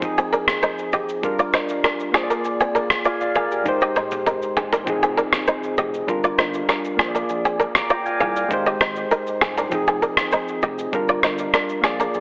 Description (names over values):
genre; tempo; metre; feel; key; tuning
afrobeats; 99 BPM; 4/4; straight; F dorian; A4 = 440 Hz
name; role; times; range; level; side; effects
soft electric-piano-like synth keys; accompaniment; 0.0-12.2 s; F3 to D6; -23 LUFS; equal; chorus
breakbeat sampler-style drum kit; drums; 0.0-12.2 s; kick drum, rim click, shaker, toms; -22 LUFS; equal; none
kora; riff; 0.2-12.1 s; C4 to F5; -22 LUFS; equal; tape echo
saturated sub bass; bass; 4.9-12.2 s; Eb1 to C2; -35 LUFS; equal; none
impact; sound effects; 4.9-7.3 s; none; -40 LUFS; equal; none
room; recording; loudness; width
moderate plate reverb, RT60 1.8 s, digital ambience; heavily compressed radio sound, telephone sound; -18 LUFS; side -28 dB against mid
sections
0.0-4.9 A section; 4.9-12.2 B section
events
drum fill 3.7-4.9; impact 4.9-7.3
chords
0.0 Fm7; 1.2 Gm7; 2.1 Bb7; 3.7 Abmaj7; 4.9 Fm7; 6.1 Gm7; 7.0 Bb7; 8.5 Abmaj7; 9.7 Fm7; 10.9 Gm7